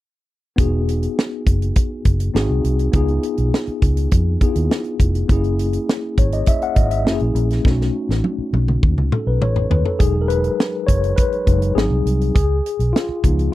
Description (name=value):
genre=lush 1970s-style soul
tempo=102 BPM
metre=4/4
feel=straight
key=E major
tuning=A4 = 437 Hz
part: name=mellow tine electric piano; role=accompaniment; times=0.6-13.5 s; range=E#3 to F#5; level=-22 LUFS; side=left 2 dB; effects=medium stereo tremolo
part: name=vintage muted fingered electric bass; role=bass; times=0.6-13.5 s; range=E1 to E#2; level=-19 LUFS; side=equal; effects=none
part: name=tight funk drum kit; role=drums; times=0.6-13.5 s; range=hi-hat, kick drum, snare drum, toms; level=-18 LUFS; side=equal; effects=none
room=little or no reverb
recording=dry, close 1970s-style studio recording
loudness=-16 LUFS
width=side -16 dB against mid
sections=0.6-10.0 A section; 10.0-13.5 B section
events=drum fill 7.6-10.0; tine electric piano solo 10.0-13.5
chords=0.6 Emaj9; 2.3 G#7; 2.9 C#7; 5.3 F#7; 7.6 B7; 10.0 Emaj9; 11.8 G#7; 12.3 C#7